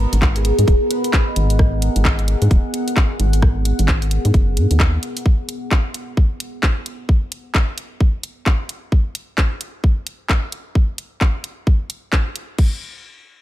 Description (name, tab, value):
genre	UK garage, two-step garage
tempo	131 BPM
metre	4/4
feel	swing 60% on 16ths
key	unclear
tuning	A4 = 440 Hz
part	concert harp	melody	0.0-3.1 s	B3 to D#5	-24 LUFS	equal	dub echo
part	bright studio violin section	sustained chords	0.0-1.6 s	B3 to A#4	-34 LUFS	equal	sidechain pumping
part	rubbery square bass	bass	0.0-5.0 s	D#1 to G#2	-16 LUFS	equal	sidechain pumping
part	deep dark ambient pad	texture	0.0-5.3 s	B3 to F#5	-27 LUFS	equal	chorus, built-in reverb, sidechain pumping
part	garage drum kit	drums	0.1-12.7 s	crash cymbal, handclaps, hi-hat, rim click	-23 LUFS	equal	studio reverb
part	electronic kick drum	drums	0.2-12.7 s	none	-15 LUFS	equal	studio reverb
room	digital ambience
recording	none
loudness	-16 LUFS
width	side -14 dB against mid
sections	0.0-12.6 A section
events	none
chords	0.0 G#m9; 5.0 Bmaj9; 8.9 N.C.